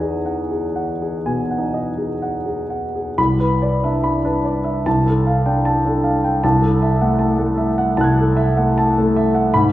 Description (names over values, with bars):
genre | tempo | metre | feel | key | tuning
classical, impressionist solo piano | 59-80 BPM | 4/4 | rubato | E major | A4 = 439 Hz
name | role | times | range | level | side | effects
clear grand piano | solo | 0.0-9.7 s | C2 to G#6 | -16 LUFS | equal | none
room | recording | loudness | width
wet recital hall reverb, RT60 1.8 s | heard from further back in the room | -16 LUFS | side -14 dB against mid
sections
0.0-3.2 A section; 3.2-9.7 B section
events
none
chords
0.0 Emaj9; 3.2 Cmaj9; 4.9 G9sus4/C; 6.4 F#m9/C